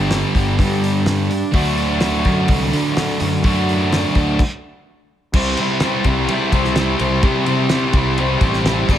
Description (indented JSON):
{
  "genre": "classic rock",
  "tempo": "127 BPM",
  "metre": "4/4",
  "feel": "straight",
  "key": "unclear",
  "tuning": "A4 = 440 Hz",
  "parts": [
    { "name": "sludgy distorted guitar", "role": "riff", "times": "0.0-9.0 s", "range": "G2 to D5", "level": "-18 LUFS", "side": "equal", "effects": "overdrive" },
    { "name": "fuzz picked electric bass", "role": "bass", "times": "0.0-9.0 s", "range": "G1 to D3", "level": "-21 LUFS", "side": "equal", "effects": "overdrive" },
    { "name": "cloth-damped thuddy drum kit", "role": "drums", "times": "0.1-9.0 s", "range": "crash cymbal, hi-hat, kick drum, ride cymbal, snare drum", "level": "-20 LUFS", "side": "equal", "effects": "none" }
  ],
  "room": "little or no reverb",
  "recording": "none",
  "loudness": "-15 LUFS",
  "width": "side -10 dB against mid",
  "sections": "0.0-5.3 A section; 5.3-9.0 B section",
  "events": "stop 4.4-5.3",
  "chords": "0.0 G; 1.5 D; 5.3 C"
}